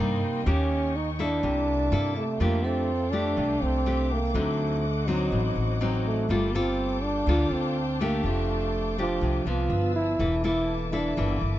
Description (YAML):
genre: bossa nova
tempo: 123 BPM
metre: 4/4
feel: straight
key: F major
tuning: A4 = 438 Hz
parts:
  - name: breathy trombone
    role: melody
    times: 0.0-11.4 s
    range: F3 to F4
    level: -28 LUFS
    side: right 2 dB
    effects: none
  - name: nylon-string guitar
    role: accompaniment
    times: 0.0-11.6 s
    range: A2 to A4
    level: -29 LUFS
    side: left 2 dB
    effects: none
  - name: muted studio string section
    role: sustained chords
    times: 0.0-11.6 s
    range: Bb3 to E6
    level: -36 LUFS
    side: left 4 dB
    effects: none
  - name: upright bass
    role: bass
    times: 0.0-11.6 s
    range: E1 to G2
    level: -28 LUFS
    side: equal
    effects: none
  - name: vibraphone with medium hard mallets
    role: accompaniment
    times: 2.2-6.3 s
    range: A4 to E5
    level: -38 LUFS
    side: right 2 dB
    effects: none
room: little or no reverb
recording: dark, warm production, nothing above 8.0 kHz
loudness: -24 LUFS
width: side -14 dB against mid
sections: 0.0-2.4 A section; 2.4-11.6 B section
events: none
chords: 0.5 Eb7; 1.4 C13; 2.4 F69; 4.3 D7b9; 6.3 Gm9; 8.2 F69; 9.7 G13; 10.2 C13/E (rootless)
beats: | 0.46 0.94 1.43 1.92 | 2.40 2.89 3.38 3.86 | 4.35 4.84 5.32 5.81 | 6.30 6.78 7.27 7.76 | 8.24 8.73 9.22 9.71 | 10.19 10.68 11.17